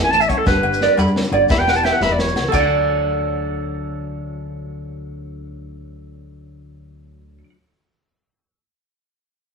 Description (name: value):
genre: highlife guitar band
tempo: 116 BPM (dotted quarters)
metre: 12/8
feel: straight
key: D major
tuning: A4 = 438 Hz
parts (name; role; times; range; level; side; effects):
- bright clarinet; melody; 0.0-2.5 s; A4 to A5; -18 LUFS; equal; none
- nylon-string guitar; accompaniment; 0.0-7.5 s; G2 to A4; -29 LUFS; left 5 dB; none
- plucky analog bass; bass; 0.0-7.4 s; E1 to A2; -25 LUFS; equal; none
- electric guitar at the edge of break-up; arpeggios; 0.1-7.5 s; A4 to B5; -20 LUFS; right 4 dB; spring reverb
- crunchy breakbeat drum kit; drums; 0.1-2.6 s; crash cymbal, hi-hat, kick drum, snare drum; -23 LUFS; equal; none
- shekere; percussion; 0.2-2.7 s; none; -29 LUFS; right 1 dB; none
- agogo bells; percussion; 0.3-2.6 s; none; -29 LUFS; left 9 dB; none
room: wet studio reverb, RT60 0.9 s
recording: band playing live in one room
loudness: -15 LUFS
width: side -5 dB against mid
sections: 0.0-2.5 A section; 2.5-6.7 B section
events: clarinet solo 0.0-2.5; drum fill 0.5-2.5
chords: 0.5 G; 1.5 Em; 2.5 D